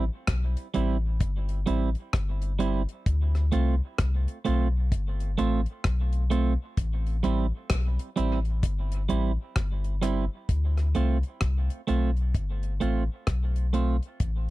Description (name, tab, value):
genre	dub reggae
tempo	65 BPM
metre	4/4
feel	swing 61% on 16ths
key	D dorian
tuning	A4 = 440 Hz
part	clean electric guitar	accompaniment	0.0-14.0 s	G3 to F4	-30 LUFS	right 6 dB	dub echo
part	soft dub sub bass	bass	0.0-14.5 s	G1 to D2	-26 LUFS	left 1 dB	none
part	deep reggae drum kit	drums	0.3-14.5 s	hi-hat, kick drum, rim click	-27 LUFS	left 1 dB	none
room	little or no reverb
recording	dry, close 1970s-style studio recording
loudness	-24 LUFS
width	side -17 dB against mid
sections	0.0-10.5 A section; 10.5-14.5 B section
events	none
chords	0.0 Am7; 3.1 Dm7; 6.8 Am7; 10.5 Dm7